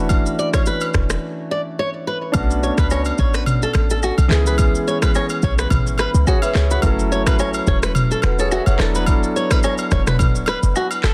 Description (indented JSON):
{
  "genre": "afrobeats",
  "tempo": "107 BPM",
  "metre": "4/4",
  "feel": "swing 55% on 16ths",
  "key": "unclear",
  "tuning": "A4 = 440 Hz",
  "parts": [
    { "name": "warm grand piano", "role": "accompaniment", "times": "0.0-11.1 s", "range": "E3 to F#5", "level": "-26 LUFS", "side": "equal", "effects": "none" },
    { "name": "short 808-style bass", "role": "bass", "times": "0.0-11.1 s", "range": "D1 to C#2", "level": "-22 LUFS", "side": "equal", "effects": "none" },
    { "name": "afro-pop drum kit", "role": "drums", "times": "0.1-11.1 s", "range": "finger snaps, handclaps, kick drum, rim click, shaker, toms", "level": "-22 LUFS", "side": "equal", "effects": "soft clipping on snare, vintage 12-bit sampler grit" },
    { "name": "agogo bells and woodblock", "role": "percussion", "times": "0.1-11.0 s", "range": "none", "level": "-30 LUFS", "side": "equal", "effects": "none" },
    { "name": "flamenco guitar", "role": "riff", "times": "0.4-11.1 s", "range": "F#4 to D5", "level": "-26 LUFS", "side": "equal", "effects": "digital delay" }
  ],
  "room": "studio ambience",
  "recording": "dense, heavily limited modern master",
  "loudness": "-18 LUFS",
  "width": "mono",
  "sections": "0.0-2.3 A section; 2.3-11.1 B section",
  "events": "break 1.2-2.3",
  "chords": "0.0 E9sus4; 2.3 Bm9; 4.3 C#m7; 6.8 F#m7; 8.8 E9sus4"
}